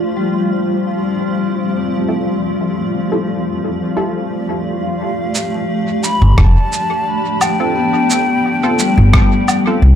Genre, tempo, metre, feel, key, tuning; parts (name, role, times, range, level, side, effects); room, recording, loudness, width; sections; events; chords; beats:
ambient dub; 87 BPM; 4/4; swing 54% on 16ths; A4 = 436 Hz
granular cloud pad; sustained chords; 0.0-10.0 s; F3 to D5; -21 LUFS; right 1 dB; built-in reverb, vintage 12-bit sampler grit
bubbling stepped-filter texture; texture; 0.0-5.0 s; F3 to F4; -23 LUFS; right 2 dB; chorus, built-in reverb
vibraphone with soft mallets; arpeggios; 0.2-10.0 s; G3 to B3; -20 LUFS; left 5 dB; tape echo
filtered dub chord stab; stabs; 2.1-9.8 s; C4 to A4; -23 LUFS; right 2 dB; chorus, dub echo
mellow hollow silver concert flute; melody; 4.7-9.9 s; F5 to B5; -19 LUFS; left 2 dB; tape echo
electronic shaker, rim click and woodblock; drums; 5.3-9.6 s; -20 LUFS; equal; dub echo
upright bass; bass; 6.2-10.0 s; F1 to C2; -9 LUFS; equal
electronic kick drum; drums; 6.4-9.3 s; -15 LUFS; equal
light reverb, digital ambience; echo-heavy mix; -13 LUFS; side -9 dB against mid
0.0-5.0 A section; 5.0-10.0 B section
0.0 Fmaj9; 5.0 G9sus4
0.17 0.86 1.55 | 2.24 2.93 3.62 4.31 | 5.00 5.69 6.38 7.07 | 7.76 8.45 9.14 9.83